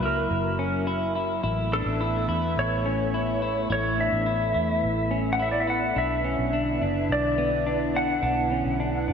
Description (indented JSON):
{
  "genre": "dream pop",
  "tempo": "106 BPM",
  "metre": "4/4",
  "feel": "straight",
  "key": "unclear",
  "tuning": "A4 = 440 Hz",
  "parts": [
    { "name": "clean lap steel guitar", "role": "melody", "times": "0.0-9.1 s", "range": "A4 to F#5", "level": "-27 LUFS", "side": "left 1 dB", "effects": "lush chorus, diffuse ambient delay" },
    { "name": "lush unison pad", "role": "sustained chords", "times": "0.0-9.1 s", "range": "D3 to E4", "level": "-29 LUFS", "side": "right 1 dB", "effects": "chorus" },
    { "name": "clean electric guitar", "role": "arpeggios", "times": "0.0-9.1 s", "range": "B3 to E4", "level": "-29 LUFS", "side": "left 2 dB", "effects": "wide subtle chorus, diffuse ambient delay" },
    { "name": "vintage muted fingered electric bass", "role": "bass", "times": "0.0-9.1 s", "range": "F#1 to E2", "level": "-30 LUFS", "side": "right 1 dB", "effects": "none" }
  ],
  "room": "wet lush hall reverb, RT60 3.0 s",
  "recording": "dreamy mix soaked in reverb",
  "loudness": "-23 LUFS",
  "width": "side -7 dB against mid",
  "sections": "0.0-9.1 A section",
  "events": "none",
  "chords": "0.0 F#7; 1.4 Aadd9; 6.0 Bmadd9"
}